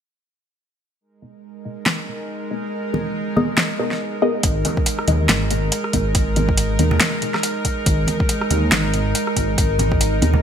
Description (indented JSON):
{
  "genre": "deep dubstep",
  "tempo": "140 BPM",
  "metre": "4/4",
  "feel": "swing 57% on 16ths, half-time",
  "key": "G# minor",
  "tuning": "A4 = 438 Hz",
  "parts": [
    { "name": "bowed-like drone", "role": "sustained chords", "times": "1.5-10.4 s", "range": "G#3 to A#4", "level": "-24 LUFS", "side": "right 1 dB", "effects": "built-in reverb" },
    { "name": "filtered dub chord stab", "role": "stabs", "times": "1.2-10.4 s", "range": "B3 to D#5", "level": "-24 LUFS", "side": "left 2 dB", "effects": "phaser, wide subtle chorus, dub echo" },
    { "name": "deep house drum kit", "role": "drums", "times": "1.9-10.3 s", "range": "hi-hat, rim click, snare drum", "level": "-20 LUFS", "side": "equal", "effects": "small room ambience" },
    { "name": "congas", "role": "percussion", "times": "2.9-10.4 s", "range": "none", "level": "-26 LUFS", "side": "right 2 dB", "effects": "none" },
    { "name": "dark detuned saw bass", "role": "bass", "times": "4.4-10.4 s", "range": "G#1 to D#2", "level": "-20 LUFS", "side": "equal", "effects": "none" },
    { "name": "electronic kick drum", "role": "drums", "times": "4.4-10.0 s", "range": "none", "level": "-21 LUFS", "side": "equal", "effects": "small room ambience" }
  ],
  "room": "light reverb, digital ambience",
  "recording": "bright 1980s-style digital production",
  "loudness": "-17 LUFS",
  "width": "side -8 dB against mid",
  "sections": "1.0-4.4 A section; 4.4-10.4 B section",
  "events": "filter sweep on synth stab 1.0-4.4, 4.4-10.4",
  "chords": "1.0 G#madd9"
}